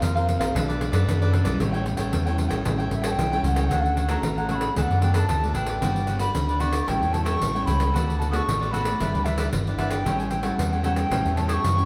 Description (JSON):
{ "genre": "samba and choro", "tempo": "114 BPM", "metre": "4/4", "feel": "straight", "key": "D major", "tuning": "A4 = 438 Hz", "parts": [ { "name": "cavaquinho", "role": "accompaniment", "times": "0.0-11.9 s", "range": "D4 to G5", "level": "-34 LUFS", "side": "equal", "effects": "none" }, { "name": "nylon-string guitar", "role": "accompaniment", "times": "0.0-11.9 s", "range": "F2 to B4", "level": "-32 LUFS", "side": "equal", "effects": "none" }, { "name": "fuzz fingered electric bass", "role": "bass", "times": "0.0-11.9 s", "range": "G1 to F#2", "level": "-27 LUFS", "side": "equal", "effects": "overdrive" }, { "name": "pandeiro", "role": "percussion", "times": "0.0-11.9 s", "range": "none", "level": "-31 LUFS", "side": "equal", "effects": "none" }, { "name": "wooden flute", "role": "melody", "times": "2.9-11.9 s", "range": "E5 to Eb6", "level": "-30 LUFS", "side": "equal", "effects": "none" } ], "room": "wet stone room reverb, RT60 1.3 s", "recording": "band playing live in one room", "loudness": "-24 LUFS", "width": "mono", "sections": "0.0-3.7 A section; 3.7-11.9 B section", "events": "none", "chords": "0.0 Bbsus2; 0.6 Bm7; 1.6 A7; 3.7 Dmaj7; 4.8 Bm7/D; 5.8 Gmaj7; 6.9 A7; 7.9 D6; 9.0 G6; 10.1 A7", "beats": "0.03 0.55 1.08 | 1.61 2.13 2.66 3.19 | 3.71 4.24 4.77 5.30 | 5.83 6.35 6.88 7.41 | 7.94 8.47 9.00 9.53 | 10.05 10.58 11.11 11.64" }